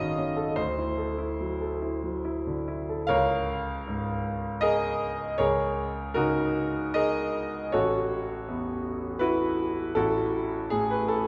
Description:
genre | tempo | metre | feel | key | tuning
classical, impressionist solo piano | 71-83 BPM | 3/4 | rubato | unclear | A4 = 440 Hz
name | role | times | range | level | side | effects
clear concert grand piano | solo | 0.0-11.3 s | Gb1 to Gb5 | -28 LUFS | equal | none
room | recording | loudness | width
wet scoring stage reverb, RT60 1.9 s | heard from further back in the room | -28 LUFS | mono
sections
0.0-3.1 A section; 3.1-11.3 B section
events
none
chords
0.0 Gbm6; 0.6 D9; 3.1 Db69; 5.4 Gb69/Db; 7.7 A69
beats
| 0.58 1.40 2.23 | 3.07 3.86 4.62 | 5.39 6.15 6.96 | 7.73 8.47 9.21 | 9.97 10.72

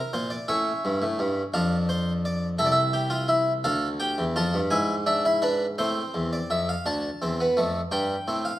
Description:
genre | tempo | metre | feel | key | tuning
classical, baroque-style 3-part fugue for harpsichord | 56 BPM (dotted quarters) | 6/8 | straight | D minor | A4 = 439 Hz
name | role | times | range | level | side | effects
harpsichord | solo | 0.0-8.6 s | C2 to A5 | -23 LUFS | equal | none
room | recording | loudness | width
moderate recital hall reverb, RT60 1.8 s | minimal, uncompressed stereo recording | -23 LUFS | side -14 dB against mid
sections
0.0-6.9 A section; 6.9-8.6 B section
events
none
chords
0.5 A7; 1.5 Dm/F; 2.6 Am/C; 3.7 Dmadd11; 4.7 E7/G#; 5.8 Am; 6.9 Dm; 7.9 C5/G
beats
| 0.48 1.54 | 2.60 3.66 | 4.72 5.79 | 6.86 7.93

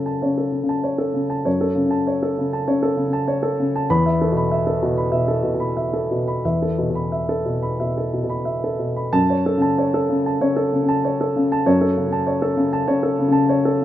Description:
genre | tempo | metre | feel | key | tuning
neoclassical minimalist piano | 87-101 BPM | 4/4 | rubato | F# minor | A4 = 440 Hz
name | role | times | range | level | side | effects
dark upright piano | solo | 0.0-13.8 s | E2 to B5 | -18 LUFS | equal | none
room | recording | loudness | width
light reverb, studio reverb | rough home demo mix | -18 LUFS | side -12 dB against mid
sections
0.0-9.1 A section; 9.1-13.8 B section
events
none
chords
0.0 F#m; 3.9 Esus4; 9.1 F#m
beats
0.22 0.83 | 1.45 2.07 2.67 3.27 | 3.89 4.51 5.12 5.75 | 6.42 7.11 7.79 8.46 | 9.13 9.78 10.41 11.04 | 11.66 12.27 12.88 13.49

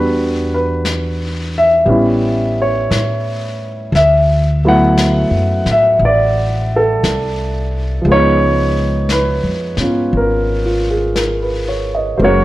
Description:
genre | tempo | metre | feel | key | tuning
jazz ballad | 58 BPM | 4/4 | swing 69% on 8ths | unclear | A4 = 440 Hz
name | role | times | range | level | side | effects
warm grand piano | accompaniment | 0.0-12.4 s | E#3 to F#5 | -14 LUFS | equal | none
upright bass | bass | 0.0-12.4 s | F#1 to A2 | -18 LUFS | equal | none
jazz brush drum kit | drums | 0.8-12.4 s | brushed snare drum, hi-hat, snare drum | -25 LUFS | left 2 dB | none
room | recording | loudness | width
light reverb | worn, warbling old tape, cassette tape, warbly pitch drift | -12 LUFS | side -16 dB against mid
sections
0.0-12.2 A section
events
none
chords
0.0 Em9; 1.9 A9; 3.9 D69; 8.1 C#13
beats
0.84 1.87 2.90 | 3.94 4.97 6.00 7.03 | 8.06 9.09 10.12 11.15 | 12.19

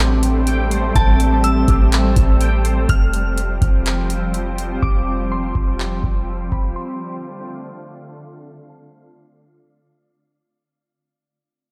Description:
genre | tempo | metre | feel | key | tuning
hip hop, atmospheric cloud-rap | 124 BPM | 4/4 | half-time | F major | A4 = 440 Hz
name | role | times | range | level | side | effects
glassy synth bell | melody | 0.0-10.1 s | A5 to F6 | -30 LUFS | equal | chorus, low-pass filter, diffuse ambient delay
shimmering ambient pad | sustained chords | 0.0-10.6 s | D3 to F4 | -26 LUFS | equal | chorus, built-in reverb, sidechain pumping, low-pass filter
twangy electric guitar | arpeggios | 0.0-2.9 s | G4 to G5 | -33 LUFS | equal | ensemble chorus, low-pass filter, diffuse ambient delay
clean 808-style bass | bass | 0.0-6.8 s | F1 to A1 | -21 LUFS | equal | none
wind-like tuned noise texture | texture | 0.0-10.6 s | C4 to A5 | -33 LUFS | equal | built-in reverb
booming analog drum machine | drums | 0.2-6.7 s | handclaps, hi-hat, kick drum | -21 LUFS | equal | none
room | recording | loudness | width
moderate lush hall reverb, RT60 1.9 s | dreamy mix soaked in reverb | -18 LUFS | mono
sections
0.0-2.9 A section; 2.9-10.6 B section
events
fade-out 2.9-10.6; filter sweep 2.9-10.6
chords
0.0 Am7; 2.9 Fsus2; 6.8 Dm7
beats
0.47 | 0.95 1.44 1.92 2.41 | 2.89 3.37 3.86 4.34 | 4.83 5.31 5.79 6.28 | 6.76 7.25 7.73 8.21 | 8.70 9.18 9.66 10.15

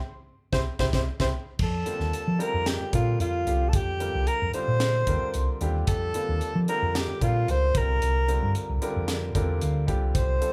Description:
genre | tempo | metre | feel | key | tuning
electric jazz fusion | 112 BPM | 4/4 | straight | unclear | A4 = 438 Hz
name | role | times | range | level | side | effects
warm alto saxophone | melody | 0.5-10.5 s | F4 to C5 | -31 LUFS | equal | none
mellow hollow silver concert flute | second line | 0.5-10.5 s | F5 to C6 | -40 LUFS | equal | none
clear baby grand piano | accompaniment | 0.5-10.5 s | D3 to F5 | -36 LUFS | equal | none
hollow-body short-scale fingered electric bass | bass | 0.5-10.4 s | C2 to F3 | -29 LUFS | equal | none
crisp fusion drum kit | drums | 0.5-10.5 s | crash cymbal, hi-hat, kick drum, snare drum | -32 LUFS | equal | none
room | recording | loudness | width
light reverb | band playing live in one room | -26 LUFS | mono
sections
0.0-1.6 A section; 1.6-10.5 B section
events
band accent 0.0-1.6; drum fill 0.5-1.6; grand piano fill 9.1-10.2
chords
0.0 C; 1.6 Fsus4; 7.7 C9sus4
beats
0.53 1.06 | 1.60 2.13 2.67 3.20 | 3.74 4.27 4.81 5.34 | 5.88 6.41 6.95 7.48 | 8.01 8.55 9.08 9.62 | 10.15

